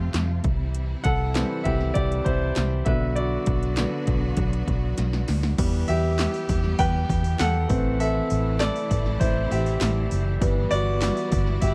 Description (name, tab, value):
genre	piano-driven pop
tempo	99 BPM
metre	4/4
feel	straight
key	E minor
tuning	A4 = 436 Hz
part	clear concert grand piano	accompaniment	0.0-11.7 s	D3 to G5	-29 LUFS	equal	none
part	clear studio string section	sustained chords	0.0-11.7 s	C3 to G4	-37 LUFS	equal	none
part	vintage muted fingered electric bass	bass	0.0-11.7 s	F#1 to F2	-27 LUFS	equal	none
part	80s electronic pad drums	drums	0.1-11.7 s	crash cymbal, handclaps, hi-hat, kick drum, snare drum	-29 LUFS	equal	none
room	little or no reverb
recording	dry, close 1970s-style studio recording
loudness	-24 LUFS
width	mono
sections	0.0-5.6 A section; 5.6-11.7 B section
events	grand piano solo 0.0-5.6, 5.6-11.7; drum fill 5.0-5.6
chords	0.4 C; 2.9 Bm; 5.6 Em; 7.7 Am; 10.4 Em/G